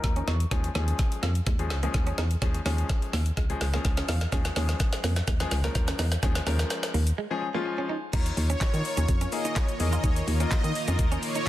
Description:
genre	dance-pop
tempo	126 BPM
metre	4/4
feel	straight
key	unclear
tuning	A4 = 440 Hz
part	clear baby grand piano	accompaniment	0.0-11.5 s	F3 to Db6	-34 LUFS	left 4 dB	sidechain pumping, low-pass filter
part	direct-recorded clean electric guitar	riff	0.0-11.5 s	Ab3 to F4	-37 LUFS	right 6 dB	lush chorus, low-pass filter
part	solid FM bass	bass	0.0-11.5 s	Db2 to Eb3	-27 LUFS	equal	sidechain pumping
part	smooth R&B drum kit	drums	0.0-11.5 s	crash cymbal, handclaps, hi-hat, kick drum, shaker, snare drum	-28 LUFS	equal	none
part	supersaw pad	melody	8.1-11.5 s	Db5 to Eb5	-33 LUFS	right 1 dB	sidechain pumping
part	string machine, full ensemble	sustained chords	8.1-11.5 s	Eb3 to F4	-35 LUFS	left 1 dB	ensemble chorus, sidechain pumping
room	light reverb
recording	dense, heavily limited modern master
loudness	-24 LUFS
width	side -14 dB against mid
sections	0.0-8.1 A section; 8.1-11.5 B section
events	build-up 0.0-8.1; drum fill 0.0-7.2; grand piano fill 0.0-0.5, 3.6-4.3, 7.4-8.1; break 7.2-8.1; drop 8.1-11.5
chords	0.0 Db; 8.1 Ebsus2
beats	0.04 | 0.52 0.99 1.47 1.94 | 2.42 2.90 3.37 3.85 | 4.32 4.80 5.28 5.75 | 6.23 6.71 7.18 7.66 | 8.13 8.61 9.09 9.56 | 10.04 10.52 10.99 11.47

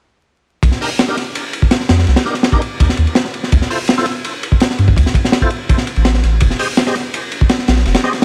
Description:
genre	drum and bass, jungle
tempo	166 BPM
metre	4/4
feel	straight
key	C minor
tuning	A4 = 440 Hz
part	soft dub sub bass	bass	0.6-7.9 s	F1 to G2	-15 LUFS	equal	none
part	crunchy breakbeat drum kit	drums	0.6-8.2 s	hi-hat, kick drum, ride cymbal, snare drum	-16 LUFS	equal	none
part	tonewheel organ	stabs	0.8-8.1 s	D4 to Eb5	-25 LUFS	equal	chorus vibrato, slow rotary speaker, dub echo
room	small room reverb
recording	vinyl crackle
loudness	-15 LUFS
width	mono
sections	0.6-8.2 A section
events	none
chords	0.6 Cm7 (rootless); 3.5 Dm7 (rootless); 6.4 Fm7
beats	| 0.63 0.99 1.35 1.71 | 2.08 2.44 2.80 3.16 | 3.52 3.88 4.24 4.61 | 4.97 5.33 5.69 6.05 | 6.41 6.77 7.13 7.50 | 7.86 8.22

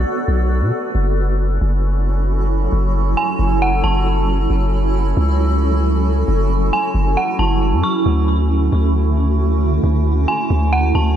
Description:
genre	hip hop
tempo	135 BPM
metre	4/4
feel	half-time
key	F# minor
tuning	A4 = 442 Hz
part	granular cloud pad	sustained chords	0.0-11.2 s	D3 to D5	-20 LUFS	right 1 dB	built-in reverb
part	long sustained 808-style bass	bass	0.0-11.2 s	F#1 to B2	-16 LUFS	equal	none
part	dark detuned synth bell	melody	3.2-11.2 s	F#5 to C#6	-21 LUFS	right 2 dB	chorus, low-pass filter, tape echo
room	light reverb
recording	none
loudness	-15 LUFS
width	side -10 dB against mid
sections	0.9-11.2 A section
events	none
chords	0.0 Bm7; 0.9 F#m7; 8.1 Dmaj7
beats	0.06 0.50 | 0.95 1.39 1.84 2.28 | 2.73 3.17 3.62 4.06 | 4.50 4.95 5.39 5.84 | 6.28 6.73 7.17 7.62 | 8.06 8.50 8.95 9.39 | 9.84 10.28 10.73

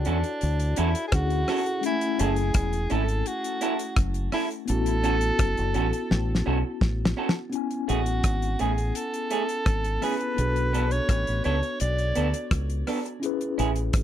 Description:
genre	lovers rock reggae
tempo	84 BPM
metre	4/4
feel	straight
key	A major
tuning	A4 = 441 Hz
part	bright soprano saxophone	melody	0.0-12.5 s	D4 to D5	-30 LUFS	right 1 dB	tape echo
part	mellow tine electric piano	accompaniment	0.0-14.0 s	G#3 to G#5	-31 LUFS	left 4 dB	medium stereo tremolo, tape echo
part	deep dub fingered electric bass	bass	0.0-14.0 s	E1 to E2	-26 LUFS	equal	none
part	damped 70s drum kit	drums	0.0-14.0 s	hi-hat, kick drum, rim click, snare drum	-27 LUFS	equal	none
part	electric guitar through a small old amp	stabs	0.1-13.7 s	A3 to A4	-28 LUFS	right 5 dB	none
room	little or no reverb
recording	dry, close 1970s-style studio recording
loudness	-23 LUFS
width	side -11 dB against mid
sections	0.0-7.5 A section; 7.5-14.0 B section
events	drum fill 6.1-7.5; soprano saxophone solo 7.5-14.0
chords	0.0 Dmaj7; 1.8 F#m7; 4.7 A6; 7.5 Amaj7; 10.4 Bm7; 13.2 Amaj7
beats	0.41 1.12 | 1.83 2.54 3.25 3.97 | 4.68 5.39 6.10 6.81 | 7.52 8.24 8.95 9.66 | 10.37 11.09 11.80 12.51 | 13.22 13.93

